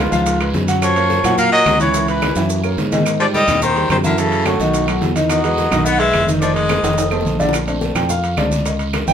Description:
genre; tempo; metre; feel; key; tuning
Afro-Cuban jazz; 214 BPM; 4/4; straight; unclear; A4 = 440 Hz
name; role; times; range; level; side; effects
breathy trumpet; melody; 0.0-7.4 s; F4 to F#5; -18 LUFS; equal; none
edgy baritone saxophone; second line; 0.0-7.0 s; Ab2 to B3; -21 LUFS; left 3 dB; none
warm grand piano; accompaniment; 0.0-9.1 s; D3 to G5; -20 LUFS; equal; none
modern bright fingered electric bass; bass; 0.0-9.1 s; F1 to Bb2; -21 LUFS; right 1 dB; none
bongos; percussion; 0.1-9.1 s; none; -30 LUFS; left 5 dB; none
congas; percussion; 0.1-9.1 s; none; -26 LUFS; left 2 dB; none
guiro; percussion; 0.1-9.1 s; none; -32 LUFS; right 4 dB; none
maracas; percussion; 0.1-9.1 s; none; -31 LUFS; right 5 dB; none
timbales; percussion; 0.3-9.1 s; none; -27 LUFS; right 3 dB; none
claves; percussion; 0.4-9.1 s; none; -28 LUFS; right 9 dB; none
room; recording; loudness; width
moderate studio reverb, RT60 0.5 s; band playing live in one room; -14 LUFS; side -8 dB against mid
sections
0.0-7.5 A section; 7.5-9.1 B section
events
drum fill 2.4-3.1, 6.8-7.5; grand piano solo 7.5-9.1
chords
0.0 Db7; 0.8 Gbmaj7; 1.9 Dbm7; 2.5 Gb9; 3.1 Abmaj7; 4.2 Gbm7; 4.7 B7; 5.3 Emaj9; 6.4 Fm7; 7.0 F7; 7.5 Bbmaj7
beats
0.26 0.54 | 0.82 1.10 1.38 1.66 | 1.94 2.22 2.50 2.78 | 3.06 3.34 3.62 3.90 | 4.18 4.46 4.74 5.02 | 5.30 5.58 5.86 6.14 | 6.42 6.70 6.98 7.26 | 7.54 7.82 8.10 8.38 | 8.66 8.94

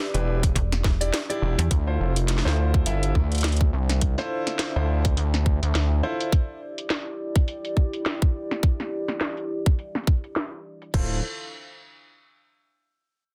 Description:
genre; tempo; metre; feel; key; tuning
glitch hop; 104 BPM; 4/4; swing 57% on 16ths; D minor; A4 = 442 Hz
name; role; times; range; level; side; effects
dark analog pad; sustained chords; 0.0-11.2 s; D4 to E5; -37 LUFS; equal; chorus, phaser, sidechain pumping
warm grand piano; stabs; 0.0-6.3, 10.9-11.2 s; D4 to E5; -32 LUFS; equal; sidechain pumping, digital delay
gritty driven synth bass; bass; 0.1-6.0, 10.9-11.2 s; D1 to D2; -25 LUFS; equal; none
drum and bass drum kit; drums; 0.1-11.1 s; crash cymbal, hi-hat, snare drum; -31 LUFS; equal; low-pass filter on snare, low-pass filter on hats, low-pass filter on cymbals, low-pass filter on room
electronic kick drum; drums; 0.4-11.1 s; none; -23 LUFS; equal; none
slap-like FM bass; bass; 0.6-1.7 s; E1 to E2; -26 LUFS; equal; none
room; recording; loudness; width
little or no reverb; dense, heavily limited modern master; -24 LUFS; mono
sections
0.0-1.7 A section; 1.7-10.9 B section; 10.9-13.2 C section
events
drop 0.0-1.7; kick drops out 1.1-1.7; filter sweep on drum 1.7-10.9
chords
0.0 Em7; 1.7 Dm9; 6.3 Em7; 10.9 Dm9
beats
0.56 1.13 | 1.71 2.29 2.86 3.44 | 4.02 4.59 5.17 5.75 | 6.33 6.90 7.48 8.06 | 8.63 9.21 9.79 10.36 | 10.94

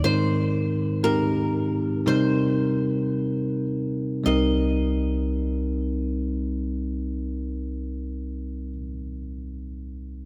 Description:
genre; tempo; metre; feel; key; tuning
pop; 52-62 BPM; 4/4; straight; C minor; A4 = 440 Hz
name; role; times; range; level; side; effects
flamenco guitar; melody; 0.0-8.7 s; Bb4 to Eb5; -32 LUFS; equal; lush chorus, analog delay
bell-like tine electric piano; accompaniment; 0.0-10.3 s; C2 to Bb4; -26 LUFS; equal; lush chorus
room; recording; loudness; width
moderate plate reverb, RT60 3.3 s; dreamy mix soaked in reverb; -25 LUFS; mono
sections
0.0-4.3 A section; 4.3-8.9 B section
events
slowing down 0.0-4.3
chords
0.1 Abadd9; 2.1 Cm7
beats
| 0.05 1.04 2.07 3.14 | 4.26 5.41 6.56 7.70

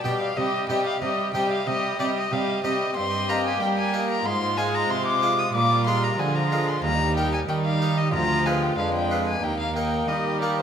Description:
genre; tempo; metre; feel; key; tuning
classical, baroque-style concerto movement with solo episodes; 93 BPM; 4/4; straight; Eb major; A4 = 439 Hz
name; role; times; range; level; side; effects
rich chamber violin section; melody; 0.0-10.6 s; G4 to Eb5; -34 LUFS; left 2 dB; none
warm violin; melody; 0.0-10.6 s; C5 to Eb6; -26 LUFS; left 3 dB; none
rich chamber violin section; second line; 0.0-10.6 s; D4 to G4; -30 LUFS; left 1 dB; none
harpsichord; accompaniment; 0.0-10.6 s; D2 to Eb5; -29 LUFS; equal; none
warm chamber viola section; accompaniment; 0.0-10.6 s; F3 to C4; -30 LUFS; right 1 dB; none
dark chamber cello section; bass; 0.0-10.6 s; D2 to G3; -28 LUFS; right 4 dB; none
room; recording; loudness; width
wet recital hall reverb, RT60 1.6 s; minimal, uncompressed stereo recording; -21 LUFS; side -8 dB against mid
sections
0.0-10.6 A section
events
none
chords
0.4 Cm; 3.0 Eb/G; 4.3 Fm7/Ab; 5.5 Bb7; 6.8 Eb; 8.1 Ddim7; 9.4 Eb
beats
| 0.37 1.02 1.67 2.32 | 2.96 3.61 4.26 4.90 | 5.55 6.20 6.84 7.49 | 8.14 8.79 9.44 10.09

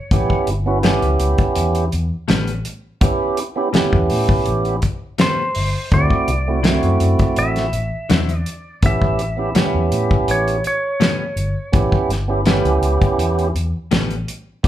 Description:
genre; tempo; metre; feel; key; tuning
straight-eighth soul blues; 83 BPM; 4/4; straight; A mixolydian; A4 = 441 Hz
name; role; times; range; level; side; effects
clean lap steel guitar; melody; 0.0-0.4, 5.2-12.1 s; C5 to E5; -24 LUFS; equal; none
tonewheel organ; accompaniment; 0.1-14.7 s; A3 to G4; -19 LUFS; right 3 dB; slow rotary speaker
vintage muted fingered electric bass; bass; 0.1-14.2 s; G1 to A2; -21 LUFS; equal; none
damped 70s drum kit; drums; 0.1-14.7 s; hi-hat, kick drum, snare drum; -18 LUFS; equal; none
direct-recorded clean electric guitar; stabs; 0.8-14.1 s; A2 to E4; -24 LUFS; left 5 dB; none
room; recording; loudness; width
moderate large studio reverb, RT60 0.8 s; band playing live in one room; -15 LUFS; side -12 dB against mid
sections
0.0-14.7 A section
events
none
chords
0.0 A9; 5.9 D9; 8.8 A9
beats
| 0.12 0.84 1.57 2.29 | 3.02 3.74 4.47 5.20 | 5.92 6.65 7.38 8.10 | 8.83 9.56 10.28 11.01 | 11.74 12.46 13.19 13.92 | 14.64

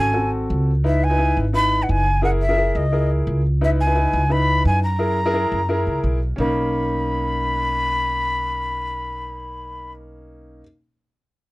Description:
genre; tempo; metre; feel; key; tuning
Afro-Cuban jazz; 173 BPM; 4/4; straight; B major; A4 = 443 Hz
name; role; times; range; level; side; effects
breathy mellow jazz flute; melody; 0.0-9.9 s; D#5 to B5; -22 LUFS; equal; none
clear upright piano; accompaniment; 0.0-10.6 s; A#3 to B4; -25 LUFS; left 1 dB; none
upright bass; bass; 0.0-10.6 s; F#1 to F#2; -21 LUFS; equal; none
room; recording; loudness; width
light reverb; dry, close 1970s-style studio recording; -18 LUFS; side -20 dB against mid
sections
0.8-6.4 A section; 6.4-9.2 B section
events
none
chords
0.2 G#7b9; 0.8 C#m7; 2.2 F#7; 3.6 C#m7; 5.0 F#7; 6.4 Bmaj9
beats
0.15 0.50 | 0.85 1.19 1.54 1.89 | 2.23 2.58 2.93 3.27 | 3.62 3.96 4.31 4.66 | 5.00 5.35 5.70 6.04 | 6.39 6.73 7.08 7.42 | 7.77 8.12 8.46 8.81

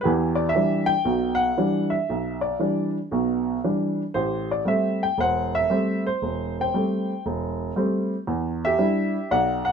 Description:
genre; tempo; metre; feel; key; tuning
solo jazz; 117 BPM; 4/4; swing 69% on 8ths, rubato; E minor; A4 = 439 Hz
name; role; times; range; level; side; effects
warm upright piano; solo; 0.0-9.7 s; E1 to G5; -21 LUFS; equal; none
room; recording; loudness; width
moderate small room reverb, RT60 0.5 s; minimal, uncompressed stereo recording; -21 LUFS; side -6 dB against mid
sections
0.0-9.7 A section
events
none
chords
0.0 Em7; 4.1 Am7; 8.3 Em7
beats
| 0.04 0.55 1.06 1.57 | 2.08 2.59 3.10 3.62 | 4.14 4.66 5.18 5.70 | 6.21 6.73 7.25 7.76 | 8.27 8.78 9.29

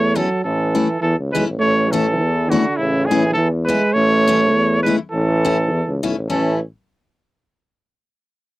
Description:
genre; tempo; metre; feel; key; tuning
alpine folk, alpine dance band; 103 BPM; 2/4; swing 53% on 8ths; A major; A4 = 441 Hz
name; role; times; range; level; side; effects
warm trumpet; melody; 0.0-6.6 s; E4 to C#5; -20 LUFS; equal; none
warm euphonium; second line; 0.0-6.6 s; C#3 to A3; -20 LUFS; right 2 dB; none
clear tuba; bass; 0.0-6.6 s; A1 to E2; -21 LUFS; left 1 dB; none
picked steel-string acoustic guitar; accompaniment; 0.2-6.6 s; A3 to E4; -20 LUFS; left 4 dB; none
room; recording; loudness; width
light reverb; dry, close 1970s-style studio recording; -15 LUFS; side -17 dB against mid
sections
0.0-1.6 A section; 1.6-6.3 B section; 6.3-7.5 C section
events
none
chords
0.0 A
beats
| 0.43 1.02 | 1.61 2.21 | 2.79 3.37 | 3.95 4.53 | 5.11 5.70 | 6.29

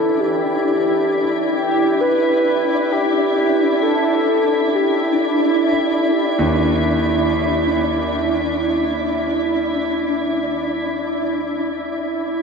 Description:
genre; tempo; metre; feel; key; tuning
dark ambient drone; free time; none; none; unclear; A4 = 440 Hz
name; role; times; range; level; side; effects
mellow horn-like synth lead; melody; 0.0-5.4 s; G4 to B4; -20 LUFS; left 2 dB; chorus, shimmer reverb, ping-pong delay
warm concert grand piano; arpeggios; 0.0-12.4 s; D#2 to D4; -26 LUFS; right 1 dB; shimmer reverb, ping-pong delay
organ-like drone; drone; 0.0-12.4 s; E4; -20 LUFS; right 2 dB; ensemble chorus, built-in reverb
flickering grainy texture; texture; 0.0-12.4 s; D4 to D5; -22 LUFS; left 2 dB; built-in reverb, shimmer reverb
room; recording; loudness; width
wet huge ambient reverb, RT60 8.0 s; none; -16 LUFS; side -5 dB against mid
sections
0.0-12.4 A section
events
fade-out on grand piano 0.0-12.4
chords
0.0 Em7; 5.7 D#maj7(no3)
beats
free time

